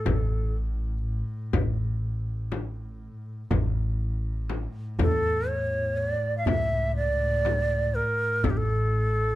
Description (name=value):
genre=Arabic maqam ensemble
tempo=122 BPM (eighths)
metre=10/8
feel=straight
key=A maqam hijaz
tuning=A4 = 436 Hz
part: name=breathy bright ney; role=melody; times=0.0-9.4 s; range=G4 to F5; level=-26 LUFS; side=right 1 dB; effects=slapback echo
part: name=rich double bass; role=drone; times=0.0-9.4 s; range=A2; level=-33 LUFS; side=equal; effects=none
part: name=upright bass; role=bass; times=0.1-9.4 s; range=A1 to E2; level=-28 LUFS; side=equal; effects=none
part: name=darbuka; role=percussion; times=0.1-9.0 s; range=none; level=-31 LUFS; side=right 1 dB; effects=none
part: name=frame drum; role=percussion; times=0.1-8.7 s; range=none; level=-30 LUFS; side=left 5 dB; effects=none
room=light reverb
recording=dark, warm production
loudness=-24 LUFS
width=side -15 dB against mid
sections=0.0-9.4 A section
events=none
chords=none